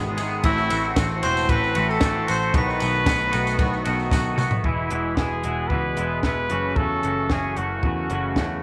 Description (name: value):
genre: indie rock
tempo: 114 BPM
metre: 4/4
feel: straight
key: E major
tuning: A4 = 439 Hz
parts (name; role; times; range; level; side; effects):
- dark analog pad; sustained chords; 0.0-4.6 s; G#4 to B5; -40 LUFS; equal; none
- twangy electric guitar; riff; 0.0-8.6 s; E2 to G#4; -28 LUFS; equal; double-tracked
- picked electric bass; bass; 0.0-8.6 s; E1 to E2; -31 LUFS; equal; none
- compact cocktail drum kit; drums; 0.2-8.5 s; hi-hat, kick drum, ride cymbal, snare drum, toms; -27 LUFS; equal; none
- tambourine; percussion; 0.2-4.6 s; none; -43 LUFS; equal; none
- breathy trumpet; melody; 0.4-8.6 s; E4 to C5; -28 LUFS; equal; tape echo
- glockenspiel with soft plastic mallets; second line; 0.5-4.1 s; E6 to C7; -38 LUFS; equal; none
room: light reverb, studio reverb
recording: none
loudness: -22 LUFS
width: mono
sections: 0.0-4.7 A section; 4.7-8.6 B section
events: drum fill 4.1-4.7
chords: 0.4 Am6; 2.5 B7; 4.7 E; 6.5 F#m7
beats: | 0.44 0.97 1.49 2.02 | 2.54 3.07 3.60 4.12 | 4.65 5.18 5.71 6.24 | 6.77 7.30 7.83 8.36